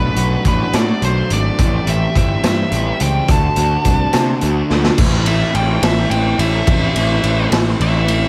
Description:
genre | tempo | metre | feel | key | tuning
indie rock | 71 BPM (dotted quarters) | 6/8 | straight | A dorian | A4 = 442 Hz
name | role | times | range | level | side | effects
nasal lead guitar with a parked wah | melody | 0.0-8.3 s | B4 to A5 | -24 LUFS | equal | overdrive, dub echo
electric guitar through a small old amp | riff | 0.0-8.3 s | A2 to G4 | -26 LUFS | equal | subtle chorus, dub echo
overdriven electric guitar | riff | 0.0-5.0 s | A2 to G4 | -28 LUFS | equal | lush chorus, dub echo
fuzz picked electric bass | bass | 0.0-8.2 s | G1 to C3 | -20 LUFS | equal | overdrive
raw garage drum kit | drums | 0.2-8.2 s | crash cymbal, hi-hat, kick drum, ride cymbal, snare drum | -20 LUFS | equal | none
room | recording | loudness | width
small room ambience | echo-heavy mix | -16 LUFS | mono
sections
0.0-5.0 A section; 5.0-8.3 B section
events
drum fill 4.7; lead electric guitar solo 5.0-8.3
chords
0.0 Bm7; 1.6 Am7; 3.3 D; 5.0 Am

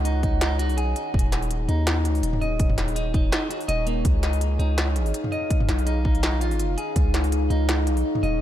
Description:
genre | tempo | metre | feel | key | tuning
half-time drum and bass | 165 BPM | 4/4 | swing 55% on 16ths, half-time | Eb minor | A4 = 441 Hz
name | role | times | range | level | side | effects
deep dark ambient pad | sustained chords | 0.0-8.4 s | Eb4 to Gb5 | -29 LUFS | left 2 dB | chorus, built-in reverb, sidechain pumping
clean electric guitar | arpeggios | 0.0-8.4 s | Bb3 to Eb5 | -30 LUFS | right 2 dB | ping-pong delay
long sustained 808-style bass | bass | 0.0-8.4 s | Eb1 to Eb2 | -23 LUFS | equal | none
industrial drum kit | drums | 0.1-8.3 s | hi-hat, snare drum, toms | -29 LUFS | equal | none
electronic kick drum | drums | 0.2-7.0 s | none | -23 LUFS | equal | none
room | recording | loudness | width
little or no reverb | none | -21 LUFS | side -12 dB against mid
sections
0.0-8.4 A section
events
none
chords
0.0 Ebm; 4.0 Db

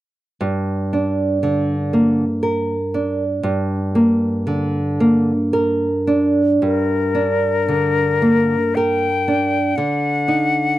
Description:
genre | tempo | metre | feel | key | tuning
romantic duo for flute and classical guitar | 58 BPM | 3/4 | uneven beats, rubato | G minor | A4 = 436 Hz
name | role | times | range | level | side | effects
nylon-string guitar | accompaniment | 0.4-10.8 s | G2 to Bb4 | -17 LUFS | right 1 dB | none
silver concert flute | melody | 6.6-10.8 s | Bb4 to G5 | -19 LUFS | left 5 dB | none
room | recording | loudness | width
light reverb | dry, close 1970s-style studio recording | -16 LUFS | side -15 dB against mid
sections
0.4-6.6 A section; 6.6-10.8 B section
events
none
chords
0.4 Gm; 9.8 D(b9)

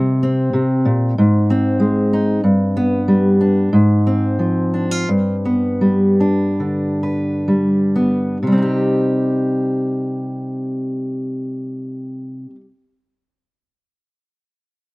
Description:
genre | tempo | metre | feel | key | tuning
folk, solo fingerstyle acoustic guitar | 61-97 BPM | 4/4 | rubato | C minor | A4 = 440 Hz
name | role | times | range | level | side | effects
fingerpicked steel-string acoustic guitar | solo | 0.0-12.7 s | G2 to B4 | -15 LUFS | equal | none
room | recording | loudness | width
light reverb | recorded outdoors, with no room sound | -15 LUFS | side -24 dB against mid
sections
0.0-8.4 A section; 8.4-12.3 B section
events
slowing down 2.4-8.4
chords
0.0 Bbsus2; 1.2 Ab; 2.4 G; 3.7 Fm/Ab; 5.1 G; 8.4 Cm

